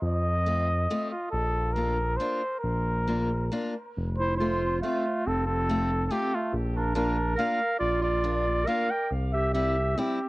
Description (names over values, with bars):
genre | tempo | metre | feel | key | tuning
alpine folk, alpine dance band | 139 BPM | 3/4 | straight | Bb major, F major from 4.0 s | A4 = 440 Hz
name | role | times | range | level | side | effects
mellow trumpet | melody | 0.0-10.3 s | F4 to G5 | -29 LUFS | equal | cassette tape, tape echo
smooth synth bass | bass | 0.0-10.0 s | F1 to F2 | -28 LUFS | equal | none
picked steel-string acoustic guitar | accompaniment | 0.5-10.2 s | G3 to F4 | -31 LUFS | left 2 dB | cassette tape
warm clarinet | second line | 4.2-10.3 s | A3 to Bb4 | -30 LUFS | right 2 dB | cassette tape
room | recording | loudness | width
light reverb | home recording on cassette | -25 LUFS | side -20 dB against mid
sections
0.0-4.0 A section; 4.0-10.3 B section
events
none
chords
0.0 F; 1.3 Bb; 4.0 F; 6.5 Bb; 9.1 C